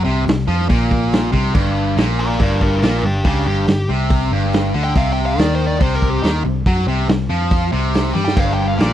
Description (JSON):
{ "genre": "blues rock power trio and southern rock", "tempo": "141 BPM", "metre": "4/4", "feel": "straight", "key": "unclear", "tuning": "A4 = 438 Hz", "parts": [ { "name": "overdriven electric guitar", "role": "riff", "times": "0.0-8.9 s", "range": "G2 to G3", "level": "-20 LUFS", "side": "equal", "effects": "none" }, { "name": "vintage muted picked electric bass", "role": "bass", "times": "0.0-8.9 s", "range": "G1 to G2", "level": "-19 LUFS", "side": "equal", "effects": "none" }, { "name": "raw garage drum kit", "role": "drums", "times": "0.3-8.9 s", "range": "crash cymbal, hi-hat, kick drum, snare drum, splash cymbal, toms", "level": "-20 LUFS", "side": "equal", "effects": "none" }, { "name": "nasal lead guitar with a parked wah", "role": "melody", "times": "2.2-8.9 s", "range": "D4 to G5", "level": "-22 LUFS", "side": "equal", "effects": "overdrive" } ], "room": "little or no reverb", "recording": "dry, close 1970s-style studio recording", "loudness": "-14 LUFS", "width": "side -11 dB against mid", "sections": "0.0-1.5 A section; 1.5-8.9 B section", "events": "lead electric guitar solo 1.5-8.9; drum fill 8.2", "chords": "0.0 Bbsus2; 1.5 G5; 5.0 C5; 8.4 G5" }